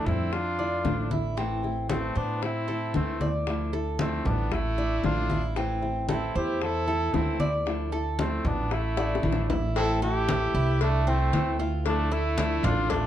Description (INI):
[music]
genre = latin, Cuban son and guajira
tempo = 114 BPM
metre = 4/4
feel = straight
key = A minor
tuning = A4 = 440 Hz
[part]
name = mellow cor anglais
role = melody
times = 0.0-13.1 s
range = C4 to A4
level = -31 LUFS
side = left 2 dB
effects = plate reverb
[part]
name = bright trumpet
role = second line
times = 0.0-13.1 s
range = A3 to E4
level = -36 LUFS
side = right 6 dB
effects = none
[part]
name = flamenco guitar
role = accompaniment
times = 0.0-12.9 s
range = D3 to E4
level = -33 LUFS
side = left 1 dB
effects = none
[part]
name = Cuban tres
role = arpeggios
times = 0.0-13.1 s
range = C4 to D5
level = -33 LUFS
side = right 2 dB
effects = none
[part]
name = upright bass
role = bass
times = 0.1-13.1 s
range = A1 to A2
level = -29 LUFS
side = right 1 dB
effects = none
[part]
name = congas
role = percussion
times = 0.1-13.1 s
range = none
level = -32 LUFS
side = left 1 dB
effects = none
[part]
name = bongos and cowbell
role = percussion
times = 0.3-13.1 s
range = none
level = -35 LUFS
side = left 7 dB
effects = none
[sound]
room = light reverb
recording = dark, warm production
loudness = -24 LUFS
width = side -11 dB against mid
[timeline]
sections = 0.0-9.8 A section; 9.8-13.1 B section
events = drum fill 9.0-9.8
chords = 0.0 Dmadd9; 1.4 Am; 3.5 Dmadd9; 5.6 Am; 7.7 Dmadd9; 9.8 Am